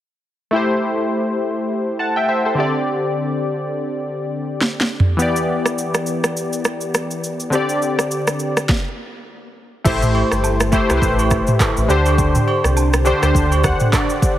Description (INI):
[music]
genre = afrobeats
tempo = 103 BPM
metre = 4/4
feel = swing 58% on 16ths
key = A minor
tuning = A4 = 440 Hz
[part]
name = warm analog keys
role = accompaniment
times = 0.5-14.4 s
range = D3 to A5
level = -18 LUFS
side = left 1 dB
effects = chorus
[part]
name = afro-pop drum kit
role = drums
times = 4.6-14.4 s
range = crash cymbal, handclaps, kick drum, rim click, shaker, snare drum, toms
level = -19 LUFS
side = right 1 dB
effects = overdrive
[part]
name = sub bass with octave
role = bass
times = 9.9-13.7 s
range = G1 to D2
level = -18 LUFS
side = equal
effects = none
[part]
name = agogo bells and woodblock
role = percussion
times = 10.1-14.1 s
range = none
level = -27 LUFS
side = right 7 dB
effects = none
[sound]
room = light reverb, digital ambience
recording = heavily compressed radio sound, multiband compression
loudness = -16 LUFS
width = side -12 dB against mid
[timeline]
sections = 0.5-9.9 A section; 9.9-14.4 B section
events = drum fill 4.6-5.2; stop 8.7-9.9; synth keys fill 13.3-14.4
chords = 0.5 Am7; 2.6 D7sus4; 5.2 Em7; 7.5 D7sus4; 9.9 Am7; 11.9 D7sus4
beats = | 0.53 1.12 1.70 2.28 | 2.86 3.45 4.03 4.61 | 5.19 5.78 6.36 6.94 | 7.52 8.11 8.69 9.27 | 9.86 10.44 11.02 11.60 | 12.19 12.77 13.35 13.93